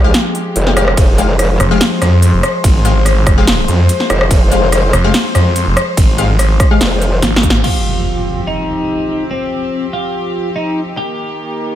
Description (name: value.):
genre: heavy wobble dubstep.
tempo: 144 BPM.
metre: 4/4.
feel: half-time.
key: F minor.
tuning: A4 = 445 Hz.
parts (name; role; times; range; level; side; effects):
warm studio string section; sustained chords; 0.0-11.8 s; Eb3 to C5; -20 LUFS; left 2 dB; sidechain pumping.
orchestra-hit-like synth stab; stabs; 0.0-6.8 s; Ab3 to F5; -20 LUFS; left 5 dB; built-in reverb, digital delay.
growl bass; bass; 0.0-1.6, 4.1-7.2 s; F1 to C2; -13 LUFS; equal; chorus, overdrive.
big-room dance drum kit; drums; 0.1-7.7 s; crash cymbal, hi-hat, ride cymbal, rim click, snare drum; -16 LUFS; equal; none.
electronic kick drum; drums; 1.0-7.5 s; none; -11 LUFS; equal; none.
snarling distorted saw bass; bass; 1.6-7.6 s; F1 to F2; -12 LUFS; equal; distortion, overdrive.
twelve-string electric guitar; melody; 7.6-11.7 s; C4 to G4; -19 LUFS; equal; digital delay.
impact; sound effects; 7.6-9.3 s; none; -22 LUFS; equal; none.
room: digital ambience.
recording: none.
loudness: -10 LUFS.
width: side -12 dB against mid.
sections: 0.0-7.6 A section; 7.6-11.8 B section.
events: drop 0.0-7.6; drum fill 7.2-7.6; band accent 7.5; impact 7.6-9.3.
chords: 0.0 Fmadd9; 7.6 Fsus2; 11.0 Eb.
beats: 0.14 0.56 | 0.97 1.39 1.81 2.22 | 2.64 3.06 3.47 3.89 | 4.31 4.72 5.14 5.56 | 5.97 6.39 6.81 7.22 | 7.64 8.06 8.47 8.89 | 9.31 9.72 10.14 10.56 | 10.97 11.39.